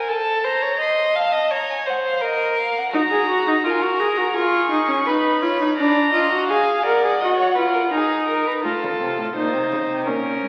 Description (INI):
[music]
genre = classical, baroque-style fugue for string quartet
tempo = 84 BPM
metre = 4/4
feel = straight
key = unclear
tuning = A4 = 440 Hz
[part]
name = rich violin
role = melody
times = 0.0-8.6 s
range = Eb5 to Db6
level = -25 LUFS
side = equal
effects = none
[part]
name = rich violin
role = second line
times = 0.0-10.5 s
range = Gb4 to F5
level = -25 LUFS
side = equal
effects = none
[part]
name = clear viola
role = accompaniment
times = 2.9-10.5 s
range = Db4 to Bb4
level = -22 LUFS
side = equal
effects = none
[part]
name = warm cello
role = bass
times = 8.6-10.5 s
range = Ab2 to Db3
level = -31 LUFS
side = equal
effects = none
[sound]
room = wet scoring stage reverb, RT60 1.9 s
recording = very old 78 rpm record, vinyl crackle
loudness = -20 LUFS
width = mono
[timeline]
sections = 0.0-8.6 A section; 8.6-10.5 B section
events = none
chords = 0.1 F7/A (rootless); 1.5 Bbm; 2.9 Ebm (rootless); 4.4 Fm7b5; 5.8 Bb7/D; 7.2 Ebm; 8.6 F7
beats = | 0.11 0.82 1.52 2.23 | 2.94 3.65 4.36 5.07 | 5.78 6.49 7.21 7.92 | 8.64 9.35 10.06